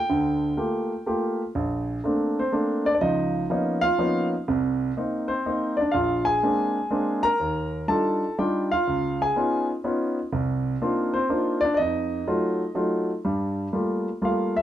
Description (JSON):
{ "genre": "jazz", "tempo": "123 BPM", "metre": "3/4", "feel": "swing 68% on 8ths", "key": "Bb major", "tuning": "A4 = 442 Hz", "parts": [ { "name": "warm baby grand piano", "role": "solo", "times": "0.0-14.6 s", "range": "Bb1 to Bb5", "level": "-22 LUFS", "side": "equal", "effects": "none" } ], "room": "moderate studio ambience, RT60 0.5 s", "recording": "dark, warm production", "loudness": "-22 LUFS", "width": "side -11 dB against mid", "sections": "0.0-1.5 A section; 1.5-13.2 B section; 13.2-14.6 C section", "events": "grand piano solo 13.2-14.6", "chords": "0.0 Gm9; 1.5 Bbmaj9; 3.0 Db13; 4.5 Cm7; 5.9 Bb9; 7.4 Ebmaj9; 8.9 Db9; 10.3 Cm11; 11.8 F7b9; 13.2 Gm9", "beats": "| 0.09 0.57 1.06 | 1.55 2.04 2.52 | 3.01 3.50 3.98 | 4.47 4.96 5.45 | 5.93 6.42 6.91 | 7.39 7.88 8.37 | 8.85 9.34 9.83 | 10.31 10.80 11.29 | 11.78 12.26 12.75 | 13.24 13.72 14.21" }